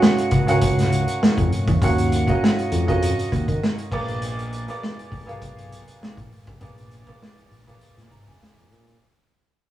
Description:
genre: lush 1970s-style soul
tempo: 100 BPM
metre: 4/4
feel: swing 54% on 16ths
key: unclear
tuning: A4 = 436 Hz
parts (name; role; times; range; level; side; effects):
- clear grand piano; accompaniment; 0.0-9.0 s; Cb4 to Bb5; -25 LUFS; right 1 dB; none
- vintage drum kit; drums; 0.0-9.0 s; crash cymbal, hi-hat, kick drum, snare drum; -21 LUFS; equal; none
- fingered electric bass; bass; 0.3-9.0 s; Bb1 to Eb3; -23 LUFS; equal; none
room: moderate booth ambience, RT60 0.2 s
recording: rough rehearsal-room recording, small room ambience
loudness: -18 LUFS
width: side -13 dB against mid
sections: 0.0-9.0 A section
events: fade-out 0.0-9.0; grand piano fill 7.8-9.0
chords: 0.0 Ebm9; 3.9 Bb7b9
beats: 0.02 0.62 1.22 | 1.82 2.42 3.02 3.62 | 4.22 4.82 5.42 6.01 | 6.61 7.21 7.81 8.41

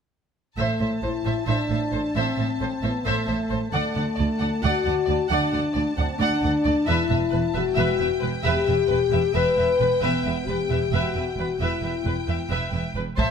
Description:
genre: cinematic, epic orchestral film score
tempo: 267 BPM (eighths)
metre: 7/8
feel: straight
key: E minor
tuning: A4 = 445 Hz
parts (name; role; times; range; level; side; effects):
- warm symphonic violin section; melody; 0.6-13.3 s; G5 to A5; -35 LUFS; left 4 dB; none
- dark symphonic violin section; second line; 0.6-13.3 s; B4 to F#5; -30 LUFS; equal; none
- warm studio viola section; accompaniment; 0.6-13.3 s; B4 to D5; -31 LUFS; right 2 dB; none
- mellow French horn section; sustained chords; 0.6-13.3 s; A3 to B4; -24 LUFS; left 5 dB; none
- dark symphonic double bass section; bass; 0.6-13.3 s; E1 to D2; -28 LUFS; right 4 dB; none
- rich symphonic cello section; bass; 0.6-13.3 s; D2 to A2; -29 LUFS; right 4 dB; none
- taiko ensemble; drums; 13.2-13.3 s; none; -23 LUFS; right 1 dB; none
room: moderate scoring stage reverb, RT60 1.9 s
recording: none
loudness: -21 LUFS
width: side -7 dB against mid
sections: 0.6-13.2 A section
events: none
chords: 0.6 Am; 3.7 D; 6.9 Em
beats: | 0.58 0.80 1.03 1.25 1.48 1.70 1.93 | 2.15 2.38 2.60 2.83 3.05 3.27 3.50 | 3.72 3.95 4.17 4.40 4.62 4.85 5.07 | 5.30 5.52 5.75 5.97 6.20 6.42 6.65 | 6.87 7.10 7.32 7.55 7.77 8.00 8.22 | 8.45 8.67 8.90 9.12 9.35 9.57 9.80 | 10.02 10.25 10.47 10.70 10.93 11.15 11.38 | 11.60 11.82 12.05 12.28 12.50 12.73 12.95 | 13.18

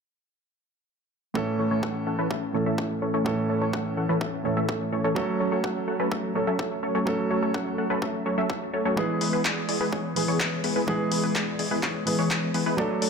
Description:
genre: EDM, festival progressive house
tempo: 126 BPM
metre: 4/4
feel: straight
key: A major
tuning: A4 = 443 Hz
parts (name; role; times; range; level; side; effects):
- dark concert grand piano; accompaniment; 1.3-13.1 s; A2 to A4; -28 LUFS; right 2 dB; sidechain pumping, ping-pong delay
- supersaw stab; riff; 1.4-13.1 s; E3 to F#5; -27 LUFS; left 1 dB; sidechain pumping, low-pass filter, ping-pong delay
- electronic kick drum; drums; 1.4-12.9 s; none; -34 LUFS; left 1 dB; high-pass filter on kick, high-pass filter on room
- big-room dance drum kit; drums; 9.2-13.1 s; handclaps, hi-hat; -29 LUFS; left 2 dB; low-pass filter on hats, low-pass filter on snare
room: light reverb, digital ambience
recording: none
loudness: -24 LUFS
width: side -5 dB against mid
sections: 1.4-13.1 A section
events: none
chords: 1.4 A; 5.2 F#m; 9.0 E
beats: | 1.35 1.83 2.31 2.78 | 3.26 3.73 4.21 4.69 | 5.16 5.64 6.12 6.59 | 7.07 7.54 8.02 8.50 | 8.97 9.45 9.93 10.40 | 10.88 11.35 11.83 12.31 | 12.78

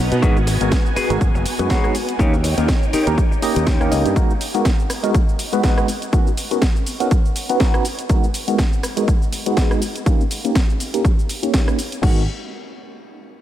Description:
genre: filtered disco house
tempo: 122 BPM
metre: 4/4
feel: swing 56% on 16ths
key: G# minor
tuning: A4 = 440 Hz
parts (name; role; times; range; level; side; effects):
- phased string machine; sustained chords; 0.0-4.1 s; B3 to A#5; -26 LUFS; equal; ensemble chorus, phaser, sidechain pumping, low-pass filter
- modern bright fingered electric bass; bass; 0.0-4.1, 12.0-12.3 s; F#1 to B2; -21 LUFS; equal; sidechain pumping, low-pass filter
- house drum kit; drums; 0.1-12.1 s; crash cymbal, hi-hat, rim click, shaker, snare drum; -26 LUFS; equal; overdrive
- tube shaker; percussion; 0.1-12.0 s; none; barely audible; none; none
- tine electric piano; accompaniment; 0.2-12.2 s; G#3 to D#5; -22 LUFS; equal; overdrive, medium stereo tremolo, phaser, sidechain pumping, low-pass filter
- clean electric guitar; riff; 0.2-4.1 s; D#4 to G5; -26 LUFS; left 3 dB; sidechain pumping, low-pass filter
- electronic kick drum; drums; 0.2-12.1 s; none; -17 LUFS; equal; overdrive
room: light reverb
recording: none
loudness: -16 LUFS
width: side -12 dB against mid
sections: 0.0-12.0 A section; 12.0-13.4 B section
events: filter sweep 0.0-12.0; clean electric guitar fill 3.4-4.2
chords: 0.2 G#m7; 2.2 D#7; 4.2 G#m7; 5.9 Bmaj7; 8.1 G#m7; 10.1 D#7; 12.0 G#m7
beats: | 0.23 0.72 1.21 1.70 | 2.19 2.69 3.18 3.67 | 4.16 4.65 5.14 5.64 | 6.13 6.62 7.11 7.60 | 8.10 8.59 9.08 9.57 | 10.06 10.55 11.05 11.54 | 12.03

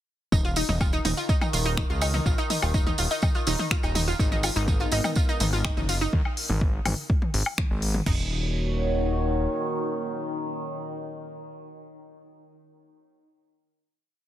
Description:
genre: melodic techno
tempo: 124 BPM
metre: 4/4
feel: straight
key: Eb minor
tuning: A4 = 440 Hz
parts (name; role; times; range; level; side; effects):
- analog pluck; arpeggios; 0.3-8.3 s; Eb4 to F5; -30 LUFS; equal; chorus, sidechain pumping, dub echo
- fat analog bass; bass; 0.3-9.5 s; Eb1 to Eb2; -27 LUFS; equal; tube saturation, sidechain pumping
- overtone-sweeping drone; drone; 1.0-12.1 s; Eb3; -36 LUFS; equal; chorus, built-in reverb, phaser, sidechain pumping
- deep house drum kit; drums; 0.3-8.2 s; crash cymbal, kick drum, toms; -25 LUFS; equal; none
- deep house drum kit; drums; 0.3-8.0 s; finger snaps, hi-hat, toms, woodblock; -30 LUFS; left 2 dB; sidechain pumping on toms, sidechain pumping on hats, sidechain pumping on perc, soft clipping on snare
- tambourine; percussion; 0.3-6.1 s; none; -34 LUFS; right 6 dB; none
- dark analog pad; sustained chords; 4.6-12.1 s; Ab3 to Db5; -32 LUFS; equal; chorus, phaser, sidechain pumping
room: little or no reverb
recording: dense, heavily limited modern master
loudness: -23 LUFS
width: side -12 dB against mid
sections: 0.3-8.1 drop; 8.1-11.9 final chord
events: drop 0.3-8.1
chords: 0.3 Eb5; 4.2 Abmadd9; 8.1 Ebm7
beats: | 0.32 0.81 1.29 1.77 | 2.26 2.74 3.23 3.71 | 4.19 4.68 5.16 5.65 | 6.13 6.61 7.10 7.58 | 8.06 8.55 9.03 9.52 | 10.00 10.48 10.97 11.45

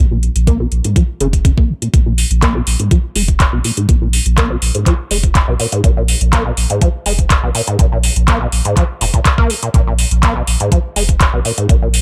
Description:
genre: acid house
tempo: 123 BPM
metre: 4/4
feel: straight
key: unclear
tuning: A4 = 440 Hz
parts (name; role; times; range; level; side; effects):
- deep acid bass; riff; 0.0-11.9 s; Ab2 to Bb3; -21 LUFS; equal; overdrive, subtle chorus, vintage 12-bit sampler grit, sidechain pumping, delay
- warm sub bass; bass; 0.0-12.0 s; F1 to Bb1; -18 LUFS; equal; sidechain pumping
- electro analog drum machine; drums; 0.2-12.0 s; handclaps, hi-hat; -20 LUFS; equal; none
- electronic kick drum; drums; 0.5-11.8 s; none; -14 LUFS; equal; overdrive
room: little or no reverb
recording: none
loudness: -14 LUFS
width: mono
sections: 0.0-12.0 A section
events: filter sweep on acid bass 0.0-12.0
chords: 0.0 Bb5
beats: 0.47 0.96 1.45 | 1.94 2.42 2.91 3.40 | 3.89 4.38 4.86 5.35 | 5.84 6.33 6.82 7.30 | 7.79 8.28 8.77 9.26 | 9.74 10.23 10.72 11.21 | 11.69

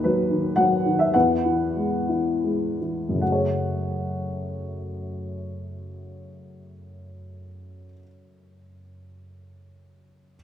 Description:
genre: classical, lyrical solo piano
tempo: 74-114 BPM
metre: 3/4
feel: rubato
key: F# dorian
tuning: A4 = 441 Hz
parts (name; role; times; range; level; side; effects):
- dark upright piano; solo; 0.0-10.4 s; D#2 to F#5; -22 LUFS; left 1 dB; none
room: moderate concert hall reverb, RT60 2.5 s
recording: minimal, uncompressed stereo recording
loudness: -22 LUFS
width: side -10 dB against mid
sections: 0.0-3.2 A section; 3.2-7.8 B section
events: slowing down 0.0-3.2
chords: 0.0 B/D#; 1.1 Eadd9; 3.2 F#madd9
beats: 0.04 0.58 | 1.15 1.77 2.45 | 3.21 4.00 4.77 | 5.54 6.29 7.05

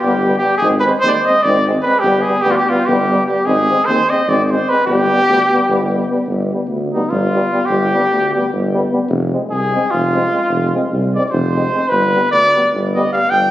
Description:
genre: balkan folk, Balkan brass band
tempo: 298 BPM (eighths)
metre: 7/8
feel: straight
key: G phrygian dominant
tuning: A4 = 437 Hz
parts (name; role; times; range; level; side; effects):
- mellow cornet; melody; 0.0-13.5 s; Eb4 to G5; -15 LUFS; equal; none
- clear euphonium; accompaniment; 0.0-13.2 s; G3 to Ab3; -23 LUFS; right 1 dB; none
- mellow tuba; bass; 0.0-13.5 s; F1 to Eb2; -19 LUFS; equal; none
- warm euphonium; accompaniment; 0.1-13.2 s; B3 to C4; -22 LUFS; left 2 dB; none
room: moderate scoring stage reverb, RT60 1.9 s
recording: recorded on a phone in the room, club reverb, compression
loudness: -13 LUFS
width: side -14 dB against mid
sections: 0.0-6.3 A section; 6.3-13.5 B section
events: cornet solo 6.3-13.5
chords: 0.0 G; 0.6 Ab; 2.0 G; 3.5 Ab; 4.9 G; 9.1 Fm; 11.9 G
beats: 0.01 0.21 0.41 | 0.61 0.82 1.02 1.23 1.43 1.63 1.83 | 2.04 2.24 2.44 2.65 2.85 3.05 3.25 | 3.46 3.66 3.86 4.06 4.26 4.47 4.67 | 4.87 5.07 5.27 5.48 5.68 5.88 6.08 | 6.28 6.48 6.69 6.89 7.09 7.29 7.49 | 7.69 7.89 8.10 8.30 8.50 8.70 8.90 | 9.10 9.30 9.50 9.70 9.90 10.11 10.31 | 10.51 10.71 10.91 11.11 11.31 11.51 11.71 | 11.91 12.11 12.31 12.51 12.71 12.92 13.12 | 13.32

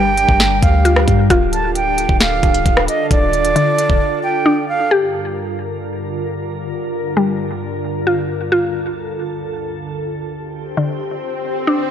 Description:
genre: hip hop, trap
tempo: 133 BPM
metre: 4/4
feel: half-time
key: G minor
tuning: A4 = 441 Hz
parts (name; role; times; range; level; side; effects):
- breathy concert flute; second line; 0.0-4.9 s; D5 to A5; -18 LUFS; right 4 dB; analog delay
- glassy FM pad; sustained chords; 0.0-11.9 s; D2 to Bb4; -22 LUFS; left 1 dB; ensemble chorus, built-in reverb
- mallet-like synth pluck; arpeggios; 0.0-11.9 s; D3 to G4; -18 LUFS; left 2 dB; chorus, analog delay
- clean 808-style bass; bass; 0.0-4.0 s; C1 to G2; -18 LUFS; equal; none
- trap drum kit; drums; 0.2-4.0 s; hi-hat, kick drum, rim click, snare drum; -16 LUFS; equal; overdrive
- swell; sound effects; 10.7-11.9 s; none; -24 LUFS; left 2 dB; none
room: light reverb, digital ambience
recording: dry, gritty hardware recording, cassette tape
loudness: -15 LUFS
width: side -9 dB against mid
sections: 0.0-4.9 A section; 4.9-11.9 B section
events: break 4.0-4.9; swell 10.7-11.9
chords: 0.0 Gm7; 1.3 Dm; 4.9 Gm7; 8.5 Dm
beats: 0.40 0.85 | 1.30 1.75 2.20 2.66 | 3.11 3.56 4.01 4.46 | 4.91 5.36 5.81 6.26 | 6.72 7.17 7.62 8.07 | 8.52 8.97 9.42 9.87 | 10.32 10.78 11.23 11.68

